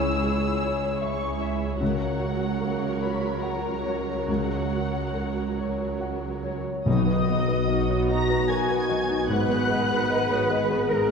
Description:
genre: cinematic, emotional film score for orchestra.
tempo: 69-76 BPM.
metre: 3/4.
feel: rubato.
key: B major.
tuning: A4 = 441 Hz.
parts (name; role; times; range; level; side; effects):
muted studio violin section; melody; 0.0-11.1 s; E5 to A#6; -33 LUFS; left 3 dB; none.
muted studio violin section; second line; 0.0-11.1 s; G#4 to A#5; -32 LUFS; left 4 dB; none.
felt-muted upright piano; accompaniment; 0.0-11.1 s; B1 to F#5; -30 LUFS; equal; none.
muted studio viola section; accompaniment; 0.0-11.1 s; F#3 to G#4; -33 LUFS; right 2 dB; none.
concert harp; arpeggios; 0.0-11.1 s; G#2 to A#5; -32 LUFS; left 5 dB; none.
muted studio cello section; bass; 0.0-11.1 s; C#2 to B4; -31 LUFS; right 4 dB; none.
muted studio double bass section; bass; 0.0-11.1 s; G#1 to C#2; -32 LUFS; right 3 dB; none.
mellow French horn section; sustained chords; 6.9-11.1 s; B3 to G#4; -28 LUFS; left 1 dB; none.
timpani; percussion; 6.9-8.1 s; B2; -30 LUFS; left 1 dB; none.
room: wet scoring stage reverb, RT60 1.9 s.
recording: heard from further back in the room.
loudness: -23 LUFS.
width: side -5 dB against mid.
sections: 0.0-6.9 A section; 6.9-11.1 B section.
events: none.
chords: 0.0 C#m7; 1.8 F#/C#; 6.9 B; 9.3 G#m7.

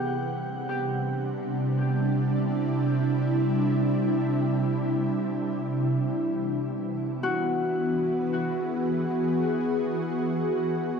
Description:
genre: ambient.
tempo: free time.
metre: none.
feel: none.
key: C lydian.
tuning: A4 = 441 Hz.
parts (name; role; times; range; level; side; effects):
ethereal airy pad; sustained chords; 0.0-11.0 s; C3 to F#5; -25 LUFS; right 1 dB; ensemble chorus, built-in reverb, shimmer reverb.
Celtic harp; arpeggios; 0.0-1.9, 7.2-9.7 s; F#4 to G4; -32 LUFS; left 2 dB; dub echo, shimmer reverb.
room: wet plate reverb, RT60 3.0 s.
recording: echo-heavy mix.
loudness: -24 LUFS.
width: side -6 dB against mid.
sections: 0.0-11.0 A section.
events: none.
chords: 0.0 C; 6.1 E7.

